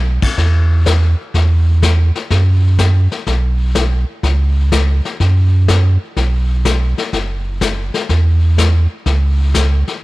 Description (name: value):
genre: country, western swing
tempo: 124 BPM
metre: 4/4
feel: swing 68% on 8ths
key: unclear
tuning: A4 = 440 Hz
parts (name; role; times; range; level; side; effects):
- pure sine sub bass; bass; 0.0-9.8 s; F#1 to F#2; -12 LUFS; right 1 dB; none
- vintage brush drum kit; drums; 0.2-10.0 s; brushed snare drum, crash cymbal, hi-hat, kick drum, snare drum; -19 LUFS; left 4 dB; none
room: little or no reverb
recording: 1960s-style stereo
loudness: -12 LUFS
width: side -20 dB against mid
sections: 0.4-10.0 A section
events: none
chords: none